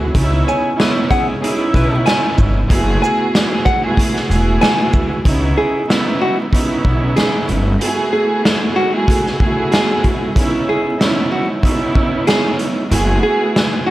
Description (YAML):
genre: hip hop, boom-bap hip-hop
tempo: 94 BPM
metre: 4/4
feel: swing 54% on 16ths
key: C# minor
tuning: A4 = 442 Hz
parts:
  - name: warm studio string section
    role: accompaniment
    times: 0.0-13.9 s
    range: A3 to G#4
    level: -18 LUFS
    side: right 2 dB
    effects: cassette tape, high-pass filter, low-pass filter
  - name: upright bass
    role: bass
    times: 0.0-7.7, 12.9-13.2 s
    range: E1 to D2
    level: -17 LUFS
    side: equal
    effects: none
  - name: raw garage drum kit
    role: drums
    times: 0.1-13.7 s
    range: hi-hat, kick drum, shaker, snare drum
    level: -17 LUFS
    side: equal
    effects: none
  - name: nylon-string guitar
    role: melody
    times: 0.5-13.9 s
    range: F#4 to G#5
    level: -20 LUFS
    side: equal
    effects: high-pass filter, low-pass filter
  - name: warm saxophone section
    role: stabs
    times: 0.5-2.0 s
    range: G#3 to C#5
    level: -25 LUFS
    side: left 2 dB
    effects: high-pass filter, low-pass filter, digital delay
room: light reverb, small room ambience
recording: vinyl crackle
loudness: -13 LUFS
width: side -16 dB against mid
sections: 0.0-5.3 A section; 5.3-13.9 B section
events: none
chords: 0.1 C#m9; 2.7 F#m11; 5.3 C#m9; 7.8 F#m11; 10.4 C#m9; 12.9 F#m11